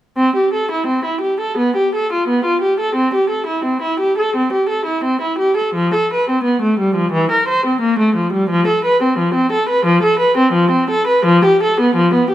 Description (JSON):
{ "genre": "classical, baroque-style suite movement for unaccompanied viola", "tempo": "87 BPM", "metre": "4/4", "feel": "rubato", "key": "C major", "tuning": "A4 = 436 Hz", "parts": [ { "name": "warm viola", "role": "solo", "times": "0.2-12.3 s", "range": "E3 to C5", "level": "-13 LUFS", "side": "equal", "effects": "none" } ], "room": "moderate recital hall reverb, RT60 1.5 s", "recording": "none", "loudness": "-13 LUFS", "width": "side -13 dB against mid", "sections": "0.2-12.3 A section", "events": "none", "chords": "none" }